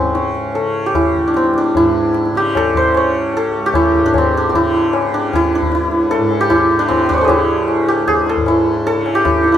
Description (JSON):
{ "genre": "indian classical, Hindustani", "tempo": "152 BPM", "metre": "7/4", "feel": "straight", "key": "C# raga todi", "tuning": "A4 = 440 Hz", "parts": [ { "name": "santur", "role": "melody", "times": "0.0-9.6 s", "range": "B#3 to G#5", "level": "-13 LUFS", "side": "equal", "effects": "none" }, { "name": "tanpura", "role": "drone", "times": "0.0-9.6 s", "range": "C#2 to C#3", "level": "-24 LUFS", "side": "right 2 dB", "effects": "none" }, { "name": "tabla", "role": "percussion", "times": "0.2-9.6 s", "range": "none", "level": "-21 LUFS", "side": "left 4 dB", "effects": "none" } ], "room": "light reverb", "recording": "band playing live in one room", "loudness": "-12 LUFS", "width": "side -10 dB against mid", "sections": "0.0-1.8 A section; 1.8-9.6 B section", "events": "speeding up 0.0-9.6", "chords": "none", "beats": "0.15 0.56 0.96 1.36 | 1.76 2.16 2.56 2.95 3.35 3.75 4.14 | 4.54 4.94 5.33 5.73 6.12 6.51 6.91 | 7.30 7.69 8.08 8.47 8.86 9.25" }